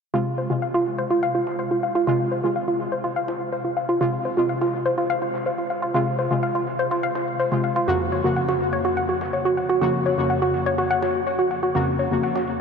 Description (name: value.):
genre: melodic techno.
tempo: 124 BPM.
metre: 4/4.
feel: straight.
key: F phrygian.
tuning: A4 = 438 Hz.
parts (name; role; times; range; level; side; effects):
woody wave-folded pluck; arpeggios; 0.1-12.4 s; F4 to Gb5; -22 LUFS; equal; chorus, ping-pong delay.
synth brass stab; stabs; 0.1-12.6 s; F2 to Gb4; -25 LUFS; left 2 dB; chorus, ping-pong delay.
dusty soul sampler-style drum kit; drums; 0.1-12.6 s; hi-hat, ride cymbal, snare drum; -45 LUFS; right 1 dB; none.
room: wet huge ambient reverb, RT60 8.1 s.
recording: dreamy mix soaked in reverb.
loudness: -20 LUFS.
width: side -6 dB against mid.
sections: 0.1-12.6 A section.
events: none.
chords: 0.1 Fm; 7.9 Gb/F.